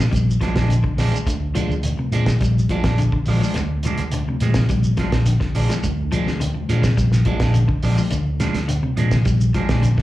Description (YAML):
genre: afrobeat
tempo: 105 BPM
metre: 4/4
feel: straight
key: Bb mixolydian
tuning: A4 = 439 Hz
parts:
  - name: clean electric guitar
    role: arpeggios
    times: 0.0-10.0 s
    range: C3 to G3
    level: -25 LUFS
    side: left 3 dB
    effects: tape echo, slapback echo
  - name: electric guitar at the edge of break-up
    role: stabs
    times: 0.0-9.9 s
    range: F3 to D4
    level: -28 LUFS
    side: right 5 dB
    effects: phaser, slapback echo
  - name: fingered electric bass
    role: bass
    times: 0.0-9.9 s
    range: Bb1 to Bb2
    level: -19 LUFS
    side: equal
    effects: none
  - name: shekere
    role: percussion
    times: 0.0-10.0 s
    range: none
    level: -28 LUFS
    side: right 1 dB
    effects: none
  - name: cloth-damped thuddy drum kit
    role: drums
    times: 0.1-10.0 s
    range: hi-hat, kick drum, snare drum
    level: -24 LUFS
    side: equal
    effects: none
  - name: congas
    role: percussion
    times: 0.4-9.8 s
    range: none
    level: -29 LUFS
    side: left 1 dB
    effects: none
room: light reverb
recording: live gig heard through the venue's PA, club reverb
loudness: -17 LUFS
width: side -16 dB against mid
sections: 0.0-10.0 A section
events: none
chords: 0.0 Bb7